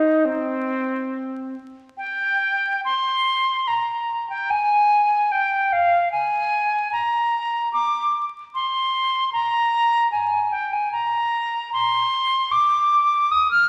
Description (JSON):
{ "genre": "classical, baroque-style fantasia for unaccompanied flute", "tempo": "75 BPM", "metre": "3/4", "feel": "rubato", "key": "unclear", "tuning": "A4 = 442 Hz", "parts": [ { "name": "silver concert flute", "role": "solo", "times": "0.0-13.7 s", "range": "C4 to F6", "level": "-21 LUFS", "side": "equal", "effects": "none" } ], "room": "wet recital hall reverb, RT60 1.9 s", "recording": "vinyl crackle", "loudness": "-21 LUFS", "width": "mono", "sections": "0.0-2.0 A section; 2.0-13.7 A section", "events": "none", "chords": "none" }